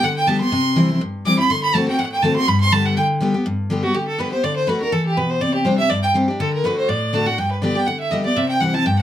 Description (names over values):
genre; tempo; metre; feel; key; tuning
bluegrass; 245 BPM; 4/4; swing 54% on 8ths; G major; A4 = 442 Hz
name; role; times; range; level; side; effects
clear fiddle; melody; 0.0-9.0 s; F#4 to D6; -20 LUFS; right 2 dB; none
picked steel-string acoustic guitar; accompaniment; 0.0-9.0 s; G2 to G4; -19 LUFS; left 1 dB; none
room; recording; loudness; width
moderate small room ambience, RT60 0.5 s; none; -16 LUFS; side -11 dB against mid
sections
0.0-3.5 A section; 3.5-9.0 B section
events
fiddle solo 0.0-3.5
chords
0.0 G; 0.5 C; 1.5 D7; 2.5 G; 4.4 D; 5.4 Csus2; 6.4 D; 7.4 G; 8.4 C